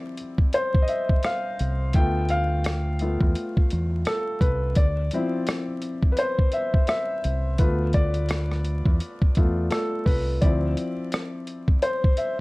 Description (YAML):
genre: lo-fi hip hop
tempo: 85 BPM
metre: 4/4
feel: swing 59% on 16ths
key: D dorian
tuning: A4 = 441 Hz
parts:
  - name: felt-muted upright piano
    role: accompaniment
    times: 0.0-12.4 s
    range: F3 to G5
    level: -26 LUFS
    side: left 1 dB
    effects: low-pass filter
  - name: boom bap sampler-style drum kit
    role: drums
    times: 0.2-12.4 s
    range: hi-hat, kick drum, rim click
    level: -21 LUFS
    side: equal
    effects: vintage 12-bit sampler grit
  - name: deep dub fingered electric bass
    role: bass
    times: 1.6-10.7 s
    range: C2 to E2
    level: -25 LUFS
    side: equal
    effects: none
room: light reverb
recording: vinyl crackle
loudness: -21 LUFS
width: side -22 dB against mid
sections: 0.0-12.4 A section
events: felt piano solo 0.0-12.4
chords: 0.0 Dm9; 1.9 Cmaj13 (rootless); 4.8 Dm9; 7.6 Dm69; 10.4 Dm9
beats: 0.53 1.24 | 1.95 2.65 3.36 4.06 | 4.77 5.47 6.18 6.89 | 7.59 8.30 9.00 9.71 | 10.42 11.12 11.83